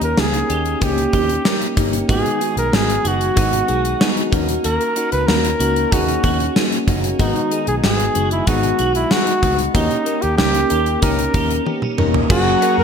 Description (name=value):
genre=1980s-style pop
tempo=94 BPM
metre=4/4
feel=straight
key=G# minor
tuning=A4 = 441 Hz
part: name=warm flugelhorn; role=melody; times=0.0-12.8 s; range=D#4 to B4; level=-20 LUFS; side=right 1 dB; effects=none
part: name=FM electric piano with auto-pan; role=accompaniment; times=0.0-12.8 s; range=G#3 to A#4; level=-22 LUFS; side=left 4 dB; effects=none
part: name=twelve-string electric guitar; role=riff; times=0.0-12.8 s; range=D#3 to G4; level=-26 LUFS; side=right 3 dB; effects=ensemble chorus
part: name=vintage muted picked electric bass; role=bass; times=0.0-12.8 s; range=E1 to F#2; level=-23 LUFS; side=equal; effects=none
part: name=gated 80s drum kit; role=drums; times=0.0-12.8 s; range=crash cymbal, hi-hat, kick drum, snare drum, toms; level=-19 LUFS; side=equal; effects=none
part: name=brassy analog pad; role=sustained chords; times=12.3-12.8 s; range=G#4 to C#6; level=-23 LUFS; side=equal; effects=chorus
part: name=cowbell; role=percussion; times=12.3-12.8 s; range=none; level=-34 LUFS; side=left 8 dB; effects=none
room=moderate lush hall reverb, RT60 1.5 s, studio reverb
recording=bright 1980s-style digital production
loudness=-15 LUFS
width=side -7 dB against mid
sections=0.0-12.3 A section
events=drum fill 11.7-12.3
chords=0.0 D#7; 2.1 G#m7; 4.3 D#m7; 7.2 G#m7; 9.7 D#7; 12.3 F#add9